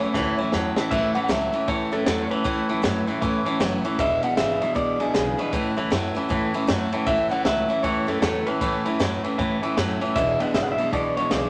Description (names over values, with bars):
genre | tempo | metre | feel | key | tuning
rockabilly | 156 BPM | 4/4 | swing 63% on 8ths | A major | A4 = 440 Hz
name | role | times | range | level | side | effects
electric guitar through a small old amp | melody | 0.0-11.5 s | G#4 to F#5 | -28 LUFS | equal | none
picked steel-string acoustic guitar | accompaniment | 0.0-11.5 s | E2 to E4 | -31 LUFS | equal | none
twangy electric guitar | riff | 0.0-11.5 s | E2 to F#3 | -28 LUFS | equal | spring reverb
upright bass | bass | 0.0-11.5 s | E1 to A2 | -35 LUFS | equal | none
compact cocktail drum kit | drums | 0.0-11.4 s | crash cymbal, kick drum, ride cymbal, snare drum | -31 LUFS | equal | none
room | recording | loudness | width
moderate studio reverb, RT60 0.9 s | none | -23 LUFS | mono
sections
0.9-11.5 A section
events
drum fill 0.1-0.9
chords
0.0 A; 4.0 E7; 5.5 A; 10.2 E7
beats
0.14 0.53 | 0.91 1.29 1.68 2.06 | 2.45 2.83 3.22 3.60 | 3.99 4.37 4.76 5.14 | 5.53 5.91 6.30 6.68 | 7.07 7.45 7.84 8.22 | 8.61 9.00 9.38 9.77 | 10.15 10.54 10.93 11.31